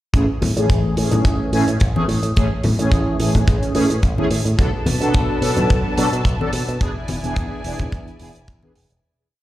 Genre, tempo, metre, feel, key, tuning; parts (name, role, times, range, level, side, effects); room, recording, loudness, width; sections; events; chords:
nu-disco, nu disco; 108 BPM; 4/4; swing 54% on 16ths; A major; A4 = 440 Hz
mellow synth brass; accompaniment; 0.1-8.7 s; E3 to A4; -21 LUFS; equal; chorus, phaser, analog delay
picked electric bass with an envelope filter; bass; 0.1-9.0 s; E1 to B2; -22 LUFS; equal
hi-hat; drums; 0.1-9.0 s; -32 LUFS; right 3 dB
kick drum; drums; 0.1-8.6 s; -18 LUFS; equal
congas; percussion; 0.4-8.7 s; -24 LUFS; left 2 dB
dark studio violin section; sustained chords; 4.6-9.0 s; D4 to A5; -28 LUFS; left 1 dB; sidechain pumping
light reverb; played on a big sound system in a bare room, large studio reverb; -16 LUFS; side -15 dB against mid
0.1-9.0 groove
fade-out 6.1-9.0
0.1 Amaj7; 4.6 Bm7; 6.8 E7